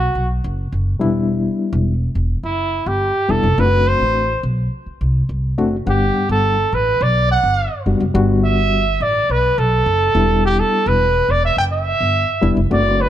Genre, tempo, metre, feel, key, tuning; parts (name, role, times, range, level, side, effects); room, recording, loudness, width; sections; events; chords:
uptempo 1960s-style soul; 105 BPM; 4/4; straight; G major; A4 = 440 Hz
warm trumpet; melody; 0.0-13.1 s; E4 to G5; -17 LUFS; right 1 dB
upright bass; bass; 0.0-13.0 s; E1 to C2; -19 LUFS; equal
reed electric piano; accompaniment; 1.0-13.1 s; G3 to F#5; -19 LUFS; left 3 dB; fast tremolo
light reverb, small room reverb; dark, warm production; -15 LUFS; side -11 dB against mid
0.0-13.1 A section
trumpet solo 0.0-13.1
0.0 Gmaj7 (rootless); 1.0 Em7; 3.6 D7/F#; 5.9 Gmaj7; 10.1 Em7